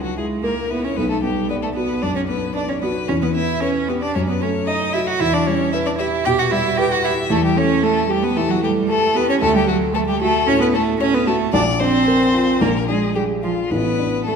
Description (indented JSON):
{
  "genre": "quick classical-period movement for piano trio",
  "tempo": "113 BPM",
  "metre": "4/4",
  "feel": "straight",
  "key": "unclear",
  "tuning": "A4 = 440 Hz",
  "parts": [
    { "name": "rich violin", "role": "melody", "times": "0.0-14.4 s", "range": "F4 to G5", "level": "-23 LUFS", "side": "left 7 dB", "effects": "none" },
    { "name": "clear cello", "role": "second line", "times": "0.0-14.4 s", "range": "F3 to G4", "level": "-20 LUFS", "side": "right 4 dB", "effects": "none" },
    { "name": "dark baby grand piano", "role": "accompaniment", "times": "0.0-14.4 s", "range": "A1 to D#5", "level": "-20 LUFS", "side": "equal", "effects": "none" }
  ],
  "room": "wet scoring stage reverb, RT60 1.5 s",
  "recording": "minimal, uncompressed stereo recording",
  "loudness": "-16 LUFS",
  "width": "side -6 dB against mid",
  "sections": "0.0-14.4 A section",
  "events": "none",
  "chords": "0.0 A#dim/C#; 1.0 Bm; 3.1 Em; 4.1 D#dim/F#; 5.2 Em; 7.3 A5/E; 9.4 D; 11.5 Bb; 12.6 Bb7; 13.7 D5/A"
}